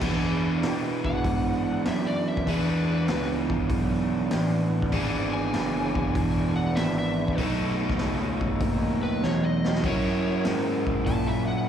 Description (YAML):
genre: blues rock power trio and southern rock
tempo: 98 BPM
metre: 4/4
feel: swing 68% on 8ths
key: unclear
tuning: A4 = 440 Hz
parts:
  - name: overdriven electric guitar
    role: riff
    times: 0.0-11.7 s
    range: B2 to A#4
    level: -27 LUFS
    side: right 2 dB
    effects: slapback echo
  - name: fuzz picked electric bass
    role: bass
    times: 0.0-11.7 s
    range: E1 to B2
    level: -28 LUFS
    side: equal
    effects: overdrive
  - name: raw garage drum kit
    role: drums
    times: 0.0-11.3 s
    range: crash cymbal, hi-hat, kick drum, snare drum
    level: -30 LUFS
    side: left 1 dB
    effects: none
  - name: overdriven slide guitar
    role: melody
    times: 1.1-11.7 s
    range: B4 to A5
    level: -34 LUFS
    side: left 2 dB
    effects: slapback echo
room: little or no reverb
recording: live gig heard through the venue's PA, club reverb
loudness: -23 LUFS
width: side -9 dB against mid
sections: 0.0-11.7 A section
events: electric slide guitar solo 0.0-11.7; drum fill 9.2-9.8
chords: 0.0 E7; 7.4 B7; 9.8 F#7